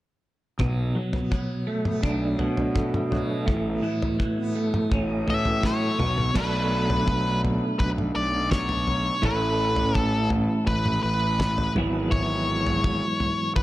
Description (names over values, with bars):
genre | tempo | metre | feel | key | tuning
psychedelic rock | 83 BPM | 4/4 | straight | B dorian | A4 = 439 Hz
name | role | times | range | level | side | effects
twelve-string electric guitar | riff | 0.6-13.6 s | G#2 to A4 | -26 LUFS | right 1 dB | rotary speaker
fuzz fingered electric bass | bass | 0.6-13.6 s | G#1 to B2 | -28 LUFS | equal | overdrive
tanpura | drone | 0.6-12.4 s | B2 to B3 | -39 LUFS | left 2 dB | stereo widening
cloth-damped thuddy drum kit | drums | 0.6-13.6 s | crash cymbal, kick drum, snare drum, toms | -27 LUFS | equal | none
octave-fuzz lead guitar | melody | 5.3-13.6 s | B4 to E5 | -27 LUFS | left 1 dB | distortion, analog delay
room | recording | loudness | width
small room reverb | none | -22 LUFS | side -16 dB against mid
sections
0.6-6.4 A section; 6.4-13.6 B section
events
drum fill 5.6-6.4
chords
0.6 Bm7; 3.5 A; 6.0 B5; 6.4 Bm7; 9.2 A; 11.8 Eadd9/G#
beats
| 0.60 1.32 2.04 2.76 | 3.48 4.20 4.92 5.64 | 6.36 7.08 7.80 8.52 | 9.24 9.96 10.68 11.40 | 12.12 12.85 13.56